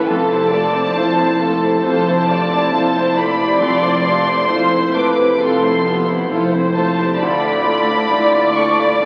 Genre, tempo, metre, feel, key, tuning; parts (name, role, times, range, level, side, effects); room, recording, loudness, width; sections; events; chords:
cinematic; 67 BPM; 4/4; rubato; A4 = 440 Hz
rich studio violin section; melody; 0.0-9.1 s; A5 to D6; -23 LUFS; equal
warm studio violin section; second line; 0.0-9.1 s; E4 to C5; -25 LUFS; equal
dark studio viola section; accompaniment; 0.0-9.1 s; B3 to D5; -20 LUFS; equal
warm baby grand piano; accompaniment; 0.0-9.1 s; D2 to E4; -22 LUFS; equal
dark studio cello section; bass; 0.0-9.1 s; D2 to F2; -28 LUFS; equal
warm studio double bass section; bass; 0.0-9.1 s; F1 to D2; -31 LUFS; equal
wet scoring stage reverb, RT60 1.5 s; very old 78 rpm record, vinyl crackle; -16 LUFS; mono
0.0-9.1 A section
0.1 Fmaj7; 7.2 Dmadd9